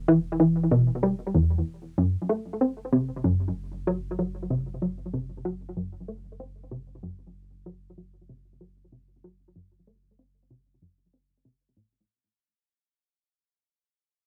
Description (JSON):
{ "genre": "ambient, sequencer-driven space music", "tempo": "95 BPM", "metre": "4/4", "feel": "straight", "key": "unclear", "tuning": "A4 = 443 Hz", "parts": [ { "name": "warm sub bass", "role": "bass", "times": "0.0-12.1 s", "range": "E1 to F#1", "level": "-46 LUFS", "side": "equal", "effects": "none" }, { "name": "plucky analog bass", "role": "riff", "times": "0.1-12.0 s", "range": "E2 to C4", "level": "-26 LUFS", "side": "equal", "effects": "cassette tape, analog delay" } ], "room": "wet booth ambience, RT60 0.2 s", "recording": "home recording on cassette", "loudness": "-26 LUFS", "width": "mono", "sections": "0.0-12.1 A section", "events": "fade-out 0.0-12.1", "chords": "0.0 E5; 2.0 F#dim" }